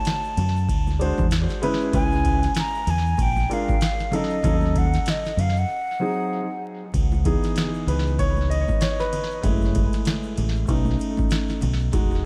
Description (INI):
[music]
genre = hip hop, jazz-hop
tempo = 96 BPM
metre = 4/4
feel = swing 59% on 16ths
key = unclear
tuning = A4 = 440 Hz
[part]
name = breathy mellow concert flute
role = melody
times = 0.0-6.6 s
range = D#5 to A#5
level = -30 LUFS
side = equal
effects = tape echo
[part]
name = booming analog drum machine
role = drums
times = 0.1-12.1 s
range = hi-hat, kick drum, ride cymbal, snare drum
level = -27 LUFS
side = equal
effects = tape echo
[part]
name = congas and egg shaker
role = percussion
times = 0.1-12.2 s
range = none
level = -38 LUFS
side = equal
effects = none
[part]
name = deep dub fingered electric bass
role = bass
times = 0.4-12.3 s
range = E1 to F#2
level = -25 LUFS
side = equal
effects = none
[part]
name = dark baby grand piano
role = accompaniment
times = 1.0-12.3 s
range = E3 to D#5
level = -29 LUFS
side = equal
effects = tape echo
[sound]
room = light reverb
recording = echo-heavy mix, vinyl crackle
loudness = -23 LUFS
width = mono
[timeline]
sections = 0.0-6.9 A section; 6.9-12.3 B section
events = break 5.7-6.9; grand piano solo 6.9-12.3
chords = 0.0 D#dim (rootless); 0.7 D7#11; 1.9 C#m7; 3.2 A#7; 4.4 D#m7b5; 5.7 G#7; 6.9 C#m7; 9.4 F#m7; 10.7 B7